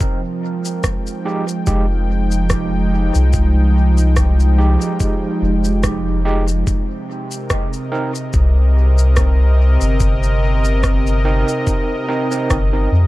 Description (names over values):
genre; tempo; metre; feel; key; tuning
ambient dub; 72 BPM; 4/4; swing 55% on 16ths; F minor; A4 = 440 Hz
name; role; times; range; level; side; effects
warm analog pad; sustained chords; 0.0-13.1 s; C3 to G5; -21 LUFS; right 1 dB; chorus
electronic kick drum; drums; 0.0-12.7 s; none; -20 LUFS; equal; none
electronic shaker and rim click; drums; 0.0-12.7 s; none; -25 LUFS; equal; overdrive, dub echo
overdriven tine electric piano; stabs; 1.3-12.9 s; Ab3 to Bb4; -24 LUFS; right 2 dB; medium tremolo, dub echo
soft dub sub bass; bass; 1.7-13.1 s; F1 to F2; -14 LUFS; equal; none
room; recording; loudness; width
little or no reverb; dark, warm production; -14 LUFS; side -17 dB against mid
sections
0.0-13.1 A section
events
none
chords
0.0 Fm9; 6.7 Cm7